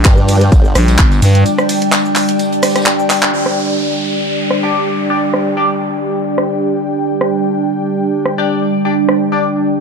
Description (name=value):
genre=bass house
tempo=128 BPM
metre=4/4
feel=swing 54% on 16ths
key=unclear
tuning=A4 = 442 Hz
part: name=dark analog pad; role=sustained chords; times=0.0-9.8 s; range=D4 to C6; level=-20 LUFS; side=right 3 dB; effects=chorus, sidechain pumping
part: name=growling FM bass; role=bass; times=0.0-1.4 s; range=G1 to G2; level=-10 LUFS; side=equal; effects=sidechain pumping
part: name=house drum kit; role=drums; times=0.0-9.2 s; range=handclaps, hi-hat, ride cymbal, rim click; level=-17 LUFS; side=equal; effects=low-pass filter on hats, low-pass filter on snare, low-pass filter on cymbals, low-pass filter on room
part: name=cabasa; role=percussion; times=0.0-3.3 s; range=none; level=-31 LUFS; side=right 5 dB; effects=none
part: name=warbly tape-like pad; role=texture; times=0.0-9.8 s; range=G3 to G5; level=-16 LUFS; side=equal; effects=chorus, built-in reverb, phaser, sidechain pumping
part: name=formant-sweep wobble bass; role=bass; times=0.1-0.7 s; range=G1 to G2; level=-12 LUFS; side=equal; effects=chorus, tube saturation, sidechain pumping
part: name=electronic kick drum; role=drums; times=0.1-1.1 s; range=none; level=-10 LUFS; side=equal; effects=none
part: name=open jazz drum kit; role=drums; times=0.1-3.2 s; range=hi-hat, snare drum, tambourine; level=-28 LUFS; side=equal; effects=none
part: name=downlifter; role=sound effects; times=3.3-7.1 s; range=none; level=-25 LUFS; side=equal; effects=none
part: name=band-passed chord stab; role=stabs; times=4.6-9.4 s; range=D4 to D5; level=-19 LUFS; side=left 3 dB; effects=phaser, lush chorus, sidechain pumping, dub echo
room=moderate plate reverb, RT60 2.1 s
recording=dark, warm production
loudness=-11 LUFS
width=side -5 dB against mid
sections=0.0-3.3 A section; 3.3-9.8 B section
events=drop 0.0-3.3; break 1.5-3.3; drum fill 3.1; band accent 3.2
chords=0.0 G5